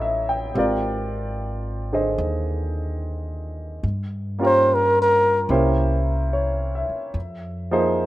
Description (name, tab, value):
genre	jazz ballad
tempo	73 BPM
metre	4/4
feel	swing 68% on 8ths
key	unclear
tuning	A4 = 445 Hz
part	clear baby grand piano	accompaniment	0.0-8.1 s	D3 to G5	-24 LUFS	equal	none
part	upright bass	bass	0.0-8.1 s	Ab1 to G2	-26 LUFS	equal	none
part	trumpet with bucket mute	melody	4.5-5.4 s	Bb4 to C5	-17 LUFS	equal	none
room	light reverb, studio reverb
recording	rough home demo mix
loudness	-20 LUFS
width	side -16 dB against mid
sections	0.0-8.1 A section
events	muted trumpet solo 0.0-8.1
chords	0.0 Aadd9; 0.6 Ab69; 3.8 Gm7b5; 5.5 C7b9; 7.2 Fm7